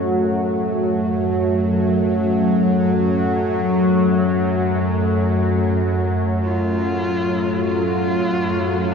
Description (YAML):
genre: dark ambient drone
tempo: free time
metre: none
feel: none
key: F# harmonic minor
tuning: A4 = 437 Hz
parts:
  - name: deep dark ambient pad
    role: sustained chords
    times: 0.0-8.9 s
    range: A3 to F5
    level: -21 LUFS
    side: equal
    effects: chorus, built-in reverb
  - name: bowed-like drone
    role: drone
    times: 0.0-8.9 s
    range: F#2 to F#3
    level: -19 LUFS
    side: equal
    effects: built-in reverb, phaser
  - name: clear horsehead fiddle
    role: melody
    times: 6.4-8.9 s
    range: D4 to F4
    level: -23 LUFS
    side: left 1 dB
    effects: ping-pong delay
room: wet huge ambient reverb, RT60 7.6 s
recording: dark, warm production, nothing above 7.7 kHz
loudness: -17 LUFS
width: side -6 dB against mid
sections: 0.0-8.9 A section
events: none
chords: 0.0 F#m; 5.2 Dm (rootless)